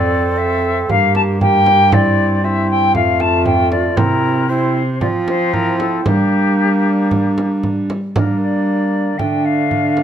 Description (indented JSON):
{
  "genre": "classical, renaissance-style consort dance",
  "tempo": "116 BPM",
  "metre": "4/4",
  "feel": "straight",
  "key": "G dorian",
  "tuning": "A4 = 440 Hz",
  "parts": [
    { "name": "silver concert flute", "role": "melody", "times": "0.0-10.0 s", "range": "G4 to A5", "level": "-17 LUFS", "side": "left 2 dB", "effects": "none" },
    { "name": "mellow tenor recorder", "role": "second line", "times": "0.0-10.0 s", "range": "D4 to A4", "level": "-20 LUFS", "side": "right 4 dB", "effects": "none" },
    { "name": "warm bassoon", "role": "accompaniment", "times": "0.0-10.0 s", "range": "A3 to C4", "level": "-23 LUFS", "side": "left 2 dB", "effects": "none" },
    { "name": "dark cello", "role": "bass", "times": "0.0-10.0 s", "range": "F2 to G3", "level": "-18 LUFS", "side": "equal", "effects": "none" },
    { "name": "frame drum", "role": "percussion", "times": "0.9-10.0 s", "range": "none", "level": "-21 LUFS", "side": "right 2 dB", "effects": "none" }
  ],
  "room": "moderate stone room reverb, RT60 1.1 s",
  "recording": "close, detailed microphones",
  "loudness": "-13 LUFS",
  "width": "side -9 dB against mid",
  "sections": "0.0-8.2 A section; 8.2-10.0 B section",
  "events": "none",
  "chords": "0.0 F; 0.9 Gm; 1.9 C/G; 2.9 F; 4.0 C; 5.0 F5; 6.1 Gm; 9.2 Dm"
}